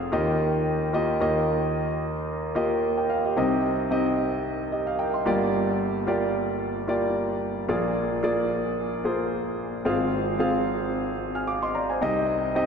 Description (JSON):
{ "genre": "pop", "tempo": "111 BPM", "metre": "4/4", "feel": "swing 55% on 16ths", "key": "unclear", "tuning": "A4 = 439 Hz", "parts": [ { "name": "warm grand piano", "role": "solo", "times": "0.0-12.7 s", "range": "F1 to F6", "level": "-23 LUFS", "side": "equal", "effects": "none" } ], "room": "wet lush hall reverb, RT60 2.8 s", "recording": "dreamy mix soaked in reverb", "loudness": "-23 LUFS", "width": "side -6 dB against mid", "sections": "0.0-1.2 A section; 1.2-3.4 B section; 3.4-12.7 C section", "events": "none", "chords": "0.1 Ebadd9; 3.4 Cm; 5.3 Gm7; 7.7 Bb7; 9.9 Fm/Ab; 12.0 Cm" }